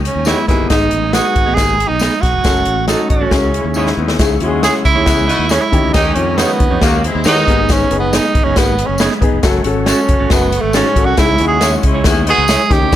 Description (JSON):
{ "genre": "uptempo 1960s-style soul", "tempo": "137 BPM", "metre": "4/4", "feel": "straight", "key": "C# minor", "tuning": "A4 = 438 Hz", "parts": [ { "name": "tonewheel organ", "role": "sustained chords", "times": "0.0-13.0 s", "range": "G4 to D#6", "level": "-29 LUFS", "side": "equal", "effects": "none" }, { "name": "modern bright fingered electric bass", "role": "bass", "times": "0.0-13.0 s", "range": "E#1 to D#3", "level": "-19 LUFS", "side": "equal", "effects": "none" }, { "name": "breathy tenor saxophone", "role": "melody", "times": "0.1-13.0 s", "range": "A3 to G#4", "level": "-16 LUFS", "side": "right 4 dB", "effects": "slapback echo" }, { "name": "swinging big-band drum kit", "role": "drums", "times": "0.1-13.0 s", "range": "hi-hat, kick drum, snare drum", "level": "-16 LUFS", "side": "equal", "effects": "none" }, { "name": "tambourine", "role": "percussion", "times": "0.2-13.0 s", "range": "none", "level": "-27 LUFS", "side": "left 6 dB", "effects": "none" }, { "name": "warm baritone saxophone", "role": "riff", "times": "0.3-13.0 s", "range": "D#2 to G#2", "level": "-21 LUFS", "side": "left 7 dB", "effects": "none" }, { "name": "clean electric guitar", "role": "stabs", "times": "0.3-12.6 s", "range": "B3 to C#5", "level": "-22 LUFS", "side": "right 5 dB", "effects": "none" }, { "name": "warm upright piano", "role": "accompaniment", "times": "0.5-13.0 s", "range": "G#2 to A4", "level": "-20 LUFS", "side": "left 5 dB", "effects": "none" }, { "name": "clear horn section", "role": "second line", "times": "3.6-7.6, 11.4-13.0 s", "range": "G#3 to G#4", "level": "-21 LUFS", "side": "left 2 dB", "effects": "none" } ], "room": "light reverb, small room ambience", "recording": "none", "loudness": "-11 LUFS", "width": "side -12 dB against mid", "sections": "0.0-4.2 A section; 4.2-13.0 B section", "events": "band accent 2.4-4.2; drum fill 3.8-4.2; tenor saxophone solo 4.2-13.0", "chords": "0.5 G#m; 2.4 F#m; 3.3 C#m; 5.7 D#7; 7.5 G#m; 9.4 F#m; 11.2 C#m", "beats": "0.26 | 0.70 1.13 1.57 2.01 | 2.45 2.88 3.32 3.76 | 4.20 4.63 5.07 5.51 | 5.95 6.38 6.82 7.26 | 7.70 8.13 8.57 9.00 | 9.44 9.88 10.31 10.75 | 11.18 11.62 12.05 12.49 | 12.92" }